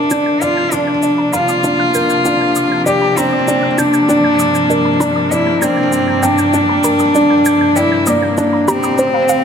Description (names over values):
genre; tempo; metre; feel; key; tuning
piano and strings electronica; 98 BPM; 4/4; straight; unclear; A4 = 440 Hz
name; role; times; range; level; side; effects
rich cello; melody; 0.0-9.4 s; Bb3 to G4; -14 LUFS; equal; ping-pong delay
muted studio string section; sustained chords; 0.0-9.4 s; G2 to E5; -20 LUFS; equal; low-pass filter
felt-muted upright piano; riff; 0.0-9.4 s; C4 to G5; -17 LUFS; equal; ping-pong delay
warbly dusty pluck; arpeggios; 0.1-9.4 s; C5 to G6; -24 LUFS; right 1 dB; chorus, ping-pong delay
shaker; drums; 0.1-9.4 s; none; -25 LUFS; left 1 dB; high-pass filter on perc
room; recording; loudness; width
wet concert hall reverb, RT60 2.4 s; none; -11 LUFS; side -7 dB against mid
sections
0.0-9.4 A section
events
build-up 0.0-9.4; filter sweep on string section 0.0-9.4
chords
0.0 Bb; 4.1 Gm